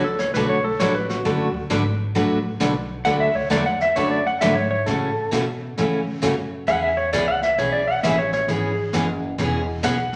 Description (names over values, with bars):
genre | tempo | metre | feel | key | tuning
country, western swing | 133 BPM | 4/4 | swing 65% on 8ths | unclear | A4 = 440 Hz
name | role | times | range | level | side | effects
clean lap steel guitar | second line | 0.0-10.2 s | F#4 to F#5 | -24 LUFS | equal | none
upright bass | bass | 0.0-10.2 s | E1 to C#3 | -32 LUFS | equal | none
jazz brush drum kit | drums | 0.2-10.2 s | brushed snare drum, hi-hat, kick drum, snare drum | -34 LUFS | equal | none
picked steel-string acoustic guitar | accompaniment | 0.4-10.0 s | C#3 to B4 | -25 LUFS | equal | none
room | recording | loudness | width
wet large studio reverb, RT60 1.3 s | none | -21 LUFS | mono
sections
0.0-10.2 A section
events
electric slide guitar solo 0.0-10.2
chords
0.0 D6; 4.9 A6; 6.7 E6